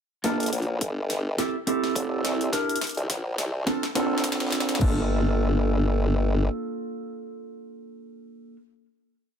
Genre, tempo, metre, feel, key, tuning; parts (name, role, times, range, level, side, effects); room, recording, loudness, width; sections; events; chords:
glitch hop; 105 BPM; 4/4; swing 57% on 16ths; G dorian; A4 = 440 Hz
mellow electric guitar; stabs; 0.2-8.6 s; Bb3 to Bb4; -28 LUFS; right 2 dB; sidechain pumping, ping-pong delay
formant-sweep wobble bass; bass; 0.2-6.5 s; F1 to C2; -26 LUFS; left 1 dB; chorus, tube saturation, high-pass filter
electronic kick drum; drums; 0.2-4.9 s; -27 LUFS; equal; high-pass filter on kick, high-pass filter on room
pop drum kit; drums; 0.2-4.9 s; crash cymbal, hi-hat, snare drum; -30 LUFS; equal; high-pass filter on snare, high-pass filter on hats, high-pass filter on cymbals, high-pass filter on room
light reverb; -23 LUFS; side -8 dB against mid
0.2-4.8 build; 4.8-7.1 final chord
build-up 0.2-4.8; drum fill 0.2-4.8
0.2 Gm9; 1.4 Fmaj7; 2.5 C9; 3.7 Bbmaj9; 4.8 Gm9